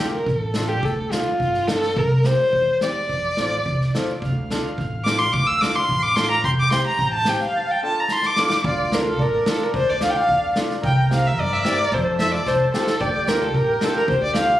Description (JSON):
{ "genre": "klezmer", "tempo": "109 BPM", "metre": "2/4", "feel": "straight", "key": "D minor", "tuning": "A4 = 440 Hz", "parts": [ { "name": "dark violin", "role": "melody", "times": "0.0-14.6 s", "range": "F4 to E6", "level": "-20 LUFS", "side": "equal", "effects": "none" }, { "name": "warm upright piano", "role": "accompaniment", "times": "0.0-14.5 s", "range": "C4 to A4", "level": "-30 LUFS", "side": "left 1 dB", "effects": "none" }, { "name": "upright bass", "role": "bass", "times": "0.0-14.6 s", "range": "A1 to G2", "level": "-25 LUFS", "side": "right 1 dB", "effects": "none" }, { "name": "street-band drum kit", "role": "drums", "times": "0.3-14.5 s", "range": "kick drum, snare drum", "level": "-26 LUFS", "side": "equal", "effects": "none" }, { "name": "mellow accordion", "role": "second line", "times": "4.2-14.6 s", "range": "D4 to A5", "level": "-28 LUFS", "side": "right 2 dB", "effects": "none" } ], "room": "moderate recital hall reverb, RT60 1.4 s", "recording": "recorded on a phone in the room, club reverb, compression", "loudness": "-18 LUFS", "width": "side -13 dB against mid", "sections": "0.0-8.6 A section; 8.6-14.6 B section", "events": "speeding up 0.0-14.6; violin solo 0.0-8.6; drum fill 8.1-8.6, 12.5-13.0", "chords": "0.0 Dm; 2.0 C; 3.1 F; 4.2 Dm; 6.4 C; 7.5 Dm; 10.8 C; 11.9 F; 13.0 Dm" }